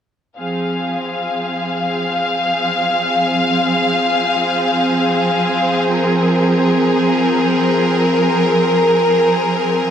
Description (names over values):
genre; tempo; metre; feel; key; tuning
drum and bass; free time; none; none; F minor; A4 = 439 Hz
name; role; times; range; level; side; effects
rich studio string section; sustained chords; 0.4-9.9 s; F3 to F5; -14 LUFS; equal; low-pass filter
room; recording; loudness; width
moderate lush hall reverb, RT60 2.2 s; none; -14 LUFS; side -8 dB against mid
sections
0.4-9.9 A section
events
filter sweep on string section 0.4-9.9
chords
0.4 Fm